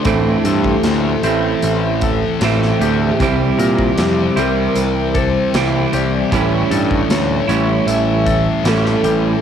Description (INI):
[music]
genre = rock, shoegaze and dream pop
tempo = 77 BPM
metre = 4/4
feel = straight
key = unclear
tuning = A4 = 442 Hz
[part]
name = warm velvety synth lead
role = melody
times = 0.0-9.4 s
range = G4 to E5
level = -22 LUFS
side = equal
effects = chorus, cassette tape, tape echo
[part]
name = phased analog pad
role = sustained chords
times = 0.0-9.4 s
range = A4 to D6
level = -28 LUFS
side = equal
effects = phaser, chorus, cassette tape
[part]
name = twangy electric guitar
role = arpeggios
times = 0.0-9.4 s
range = G4 to C#5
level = -29 LUFS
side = left 7 dB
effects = lush chorus, cassette tape, tape echo
[part]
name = biting overdriven guitar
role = riff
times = 0.0-9.4 s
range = A2 to E4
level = -19 LUFS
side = right 10 dB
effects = reverse reverb, cassette tape
[part]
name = thick fuzz guitar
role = riff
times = 0.0-9.4 s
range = A2 to C4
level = -20 LUFS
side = left 8 dB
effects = distortion, lush chorus, cassette tape
[part]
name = big rock drum kit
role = drums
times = 0.0-9.2 s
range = hi-hat, kick drum, snare drum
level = -23 LUFS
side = equal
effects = cassette tape
[part]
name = growling picked electric bass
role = bass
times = 0.1-9.3 s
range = A1 to Bb2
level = -19 LUFS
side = equal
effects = overdrive
[sound]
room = moderate small room reverb, RT60 0.5 s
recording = home recording on cassette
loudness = -13 LUFS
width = side -8 dB against mid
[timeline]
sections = 0.0-9.4 A section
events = none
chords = 0.1 Am7; 3.2 Cadd9; 6.3 A7